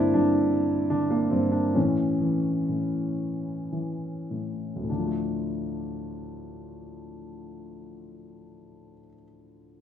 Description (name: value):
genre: classical, lyrical solo piano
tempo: 50-82 BPM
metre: 3/4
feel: rubato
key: D minor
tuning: A4 = 440 Hz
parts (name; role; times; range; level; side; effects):
- dark grand piano; solo; 0.0-9.8 s; D2 to E4; -25 LUFS; equal; none
room: light reverb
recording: minimal, uncompressed stereo recording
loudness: -24 LUFS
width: side -9 dB against mid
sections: 0.0-4.9 A section; 4.9-8.3 B section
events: slowing down 0.0-4.9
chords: 0.0 Gm; 1.8 A; 4.9 Dm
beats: 0.15 0.91 | 1.76 2.69 3.73 | 4.89 6.04 7.15